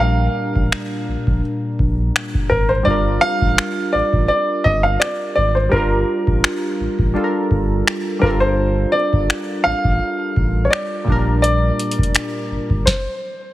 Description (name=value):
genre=contemporary R&B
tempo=84 BPM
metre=4/4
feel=swing 54% on 16ths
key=unclear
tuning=A4 = 442 Hz
part: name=warm baby grand piano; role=melody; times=0.0-13.5 s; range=Bb4 to F5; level=-19 LUFS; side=equal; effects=tape echo
part: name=warm analog keys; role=accompaniment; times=0.0-12.9 s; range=Bb2 to Bb4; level=-22 LUFS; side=equal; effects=chorus, phaser
part: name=sub bass with octave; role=bass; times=0.0-12.8 s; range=F1 to Bb1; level=-20 LUFS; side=equal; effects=none
part: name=booming analog drum machine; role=drums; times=0.6-13.1 s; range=finger snaps, hi-hat, kick drum, snare drum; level=-19 LUFS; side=equal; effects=none
room=light reverb, digital ambience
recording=heavily compressed radio sound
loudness=-16 LUFS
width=side -15 dB against mid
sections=0.0-13.5 A section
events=none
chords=0.0 Bb6; 2.9 Gm7; 8.2 Gm9; 11.1 Bb6; 12.9 N.C.